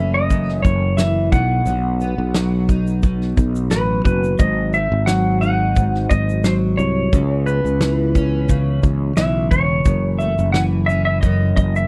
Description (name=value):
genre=acoustic pop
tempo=88 BPM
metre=4/4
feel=swing 55% on 16ths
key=C# minor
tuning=A4 = 440 Hz
part: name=clean lap steel guitar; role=melody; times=0.0-11.9 s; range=B4 to F#5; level=-24 LUFS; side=equal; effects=none
part: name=fingerpicked plugged-in steel-string acoustic guitar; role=accompaniment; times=0.0-11.9 s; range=F#2 to D#4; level=-23 LUFS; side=equal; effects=double-tracked
part: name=sustaining fretless electric bass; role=bass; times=0.0-11.9 s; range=E1 to C#2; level=-23 LUFS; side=equal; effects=none
part: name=natural country drum kit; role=drums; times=0.3-11.9 s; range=kick drum, shaker, snare drum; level=-20 LUFS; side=equal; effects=none
room=small room reverb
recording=dry, close 1970s-style studio recording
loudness=-18 LUFS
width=mono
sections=0.0-11.9 A section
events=none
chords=0.0 F#m7; 1.3 B; 4.4 G#7; 7.1 C#m7; 9.9 F#m7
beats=0.30 0.98 | 1.67 2.35 3.03 3.71 | 4.40 5.08 5.76 6.45 | 7.13 7.81 8.49 9.18 | 9.86 10.55 11.23